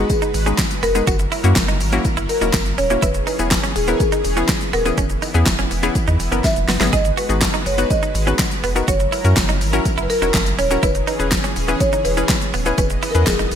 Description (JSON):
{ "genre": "dance-pop", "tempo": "123 BPM", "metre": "4/4", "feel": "straight", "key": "unclear", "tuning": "A4 = 440 Hz", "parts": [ { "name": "hollow square pluck", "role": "accompaniment", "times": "0.0-13.5 s", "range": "G#3 to B4", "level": "-24 LUFS", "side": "left 4 dB", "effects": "chorus, sidechain pumping" }, { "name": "supersaw pad", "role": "sustained chords", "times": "0.0-13.6 s", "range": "E3 to D#5", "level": "-27 LUFS", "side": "right 1 dB", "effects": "ensemble chorus, sidechain pumping" }, { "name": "direct-recorded clean electric guitar", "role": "riff", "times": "0.0-13.5 s", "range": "B3 to G#4", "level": "-27 LUFS", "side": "right 6 dB", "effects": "wide subtle chorus" }, { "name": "warm sub bass", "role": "bass", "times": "0.0-13.6 s", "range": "D#1 to F#2", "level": "-21 LUFS", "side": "equal", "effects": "sidechain pumping" }, { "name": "marimba with soft mallets", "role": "melody", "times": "0.1-13.6 s", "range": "G#4 to E5", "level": "-22 LUFS", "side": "equal", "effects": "digital delay" }, { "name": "deep house drum kit", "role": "drums", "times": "0.1-13.6 s", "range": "handclaps, hi-hat, kick drum, shaker, snare drum", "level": "-20 LUFS", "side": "equal", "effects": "gated reverb" }, { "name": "tambourine", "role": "percussion", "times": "0.1-13.6 s", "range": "none", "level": "-35 LUFS", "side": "left 10 dB", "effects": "none" } ], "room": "light reverb, digital ambience", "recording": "bright 1980s-style digital production", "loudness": "-15 LUFS", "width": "side -8 dB against mid", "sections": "0.0-13.6 A section", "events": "drum fill 6.4-6.9", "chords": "0.0 G#m7; 1.1 F#7; 3.0 E6; 5.0 C#m7/E; 6.9 G#m7; 8.9 F#7; 10.8 E6; 12.8 C#m7/E" }